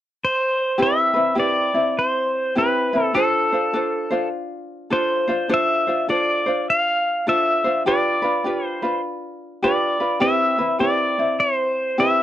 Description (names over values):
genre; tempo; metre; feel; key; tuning
hawaiian; 102 BPM; 4/4; swing 64% on 8ths; C major; A4 = 440 Hz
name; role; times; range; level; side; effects
pedal steel guitar; melody; 0.2-12.2 s; A4 to F5; -20 LUFS; equal; none
ukulele; accompaniment; 0.8-12.2 s; C4 to C5; -22 LUFS; equal; none
room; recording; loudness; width
light reverb; dry, close 1970s-style studio recording; -18 LUFS; side -12 dB against mid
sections
0.8-12.2 A section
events
none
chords
0.0 N.C.; 0.8 Cmaj7; 3.1 Dm7; 7.8 G7; 10.2 Cmaj7